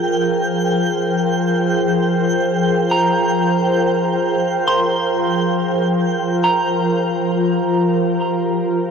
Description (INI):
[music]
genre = ambient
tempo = 51 BPM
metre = 4/4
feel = straight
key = unclear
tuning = A4 = 440 Hz
[part]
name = glassy FM pad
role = sustained chords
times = 0.0-8.9 s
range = F3 to F5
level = -17 LUFS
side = equal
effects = ensemble chorus, built-in reverb
[part]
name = twinkling granular texture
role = texture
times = 0.0-5.9 s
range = G5 to G6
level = -25 LUFS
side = right 2 dB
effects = built-in reverb
[part]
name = clean electric guitar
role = arpeggios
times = 2.9-8.6 s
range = Bb5 to C6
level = -22 LUFS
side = right 1 dB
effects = lush chorus, diffuse ambient delay
[sound]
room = wet huge ambient reverb, RT60 7.5 s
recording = worn, warbling old tape, cassette tape, warbly pitch drift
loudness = -15 LUFS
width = side -6 dB against mid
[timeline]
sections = 0.0-5.8 A section; 5.8-8.9 B section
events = none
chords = 0.0 Bbsus2/F; 5.8 Ebadd9/F (rootless)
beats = | 1.14 2.32 3.50 4.67 | 5.85 7.03 8.20